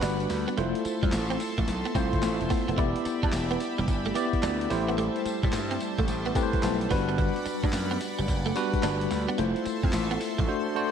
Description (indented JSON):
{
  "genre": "R&B, new jack swing",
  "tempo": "109 BPM",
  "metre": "4/4",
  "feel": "swing 65% on 16ths",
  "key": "unclear",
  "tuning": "A4 = 440 Hz",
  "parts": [
    { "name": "bell-like tine electric piano", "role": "accompaniment", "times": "0.0-10.9 s", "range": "G3 to A5", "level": "-29 LUFS", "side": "left 1 dB", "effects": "medium stereo tremolo" },
    { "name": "chorused pulse-width pad", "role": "sustained chords", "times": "0.0-10.9 s", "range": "G3 to C6", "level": "-36 LUFS", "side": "equal", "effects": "none" },
    { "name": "clean electric guitar", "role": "riff", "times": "0.0-10.5 s", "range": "G3 to E4", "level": "-34 LUFS", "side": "right 5 dB", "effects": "ensemble chorus" },
    { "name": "gritty slap bass", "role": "bass", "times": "0.0-10.5 s", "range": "E1 to A2", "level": "-31 LUFS", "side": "equal", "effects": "overdrive" },
    { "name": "boom bap sampler-style drum kit", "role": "drums", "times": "0.0-10.5 s", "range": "handclaps, hi-hat, kick drum, snare drum, tambourine", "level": "-31 LUFS", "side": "equal", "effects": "none" }
  ],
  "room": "moderate lush hall reverb, RT60 1.8 s, digital ambience",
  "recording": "dreamy mix soaked in reverb",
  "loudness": "-25 LUFS",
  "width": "side -8 dB against mid",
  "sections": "0.0-10.9 A section",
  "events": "tine electric piano fill 6.4-7.2; drums muted 10.5-10.9",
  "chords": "0.0 Gmaj7; 0.6 Fmaj7; 2.8 Em7; 4.7 Am7; 6.9 Gmaj7; 9.4 Fmaj7",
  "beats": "0.03 | 0.58 1.13 1.68 2.23 | 2.78 3.33 3.88 4.43 | 4.98 5.53 6.08 6.63 | 7.18 7.73 8.28 8.83 | 9.38 9.93 10.48"
}